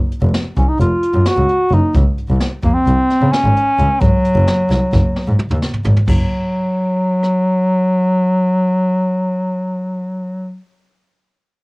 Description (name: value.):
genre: progressive instrumental, band music in an uneven meter.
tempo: 261 BPM (eighths).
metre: 9/8.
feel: straight.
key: unclear.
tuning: A4 = 439 Hz.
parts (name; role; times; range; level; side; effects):
jazz brush drum kit; drums; 0.1-7.3 s; crash cymbal, hi-hat, kick drum, rim click, snare drum, toms; -18 LUFS; equal; cassette tape.
clear double bass; bass; 0.2-6.2 s; F1 to Db3; -15 LUFS; equal; none.
warm bass clarinet; melody; 0.6-10.6 s; Gb3 to Gb4; -15 LUFS; equal; cassette tape.
room: light reverb.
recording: home recording on cassette.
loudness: -13 LUFS.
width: side -29 dB against mid.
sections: 0.0-6.1 A section; 6.1-10.2 B section.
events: drum fill 4.7-6.1.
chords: 0.0 Gb5; 1.9 Dbmaj7; 4.0 Ab5; 6.1 N.C..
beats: 0.11 0.34 0.57 0.80 1.03 1.26 1.49 1.72 | 1.95 2.17 2.40 2.63 2.86 3.09 3.32 3.55 3.78 | 4.01 4.24 4.47 4.70 4.93 5.16 5.39 5.62 5.85 | 6.08 6.30 6.54 6.77 7.00 7.23 7.46 7.69 7.92 | 8.15 8.38 8.61 8.84 9.07 9.30 9.53 9.76 9.99.